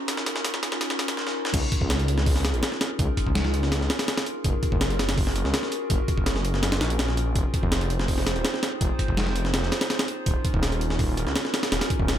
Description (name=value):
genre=drum and bass, jungle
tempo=165 BPM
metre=4/4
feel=straight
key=unclear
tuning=A4 = 439 Hz
part: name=warbly tape-like pad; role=sustained chords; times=0.0-12.2 s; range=C4 to C5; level=-31 LUFS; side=equal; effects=chorus, built-in reverb
part: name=breakbeat sampler-style drum kit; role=drums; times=0.1-12.2 s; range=crash cymbal, hi-hat, kick drum, snare drum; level=-25 LUFS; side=equal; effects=high-pass filter on snare, high-pass filter on hats, high-pass filter on cymbals, high-pass filter on kick, high-pass filter on room
part: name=detuned saw bass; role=bass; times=1.5-12.2 s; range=Eb1 to Db2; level=-26 LUFS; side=equal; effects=none
room=digital ambience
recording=none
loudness=-22 LUFS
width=side -10 dB against mid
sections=0.0-1.5 A section; 1.5-12.2 B section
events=build-up 0.0-1.5; drum fill 0.0-1.2, 1.2-1.5; drop 1.5-12.2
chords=0.0 Ebm9; 1.5 Db69; 4.4 Gbmaj9; 7.4 Fm7; 10.3 Ebm9